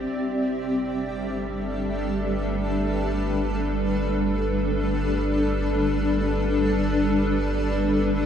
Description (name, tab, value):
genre	ambient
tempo	free time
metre	none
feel	none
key	G major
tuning	A4 = 440 Hz
part	granular cloud pad	sustained chords	0.0-8.3 s	G3 to E5	-23 LUFS	equal	built-in reverb, shimmer reverb
part	warm sub bass	bass	0.0-8.3 s	G1	-29 LUFS	equal	none
room	wet huge ambient reverb, RT60 9.0 s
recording	none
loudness	-22 LUFS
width	side -8 dB against mid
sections	0.0-8.3 A section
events	none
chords	0.1 G6